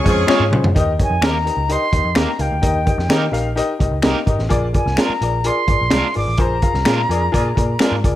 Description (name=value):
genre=uptempo 1960s-style soul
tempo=128 BPM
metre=4/4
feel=straight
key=unclear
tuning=A4 = 440 Hz
part: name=warm symphonic violin section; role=second line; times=0.0-0.5 s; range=Db5 to Db6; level=-27 LUFS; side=left 3 dB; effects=none
part: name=warm upright piano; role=accompaniment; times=0.0-8.2 s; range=Ab3 to F5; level=-22 LUFS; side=left 3 dB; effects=none
part: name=mellow horn section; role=second line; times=0.1-0.5, 7.1-7.5 s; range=Db4 to Ab4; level=-24 LUFS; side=right 3 dB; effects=none
part: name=vintage muted picked electric bass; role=bass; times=0.1-8.1 s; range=Ab1 to Eb3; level=-21 LUFS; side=equal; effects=none
part: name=crunchy breakbeat drum kit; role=drums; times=0.1-8.2 s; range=hi-hat, kick drum, snare drum, toms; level=-19 LUFS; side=equal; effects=none
part: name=electric guitar at the edge of break-up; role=stabs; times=0.3-8.0 s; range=Ab3 to Db5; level=-24 LUFS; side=right 4 dB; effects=harmonic tremolo
part: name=finger snaps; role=percussion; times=0.3-7.9 s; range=none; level=-26 LUFS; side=left 4 dB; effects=none
part: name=silver concert flute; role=melody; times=1.0-8.0 s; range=G5 to D6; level=-22 LUFS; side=equal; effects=none
room=light reverb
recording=none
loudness=-15 LUFS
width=side -13 dB against mid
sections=0.8-8.2 A section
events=drum fill 0.3-0.8; band accent 6.4-8.2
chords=0.0 Db; 0.8 Eb; 4.5 Bb7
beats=0.29 | 0.76 1.23 1.70 2.17 | 2.63 3.10 3.57 4.04 | 4.51 4.99 5.46 5.93 | 6.40 6.87 7.34 7.81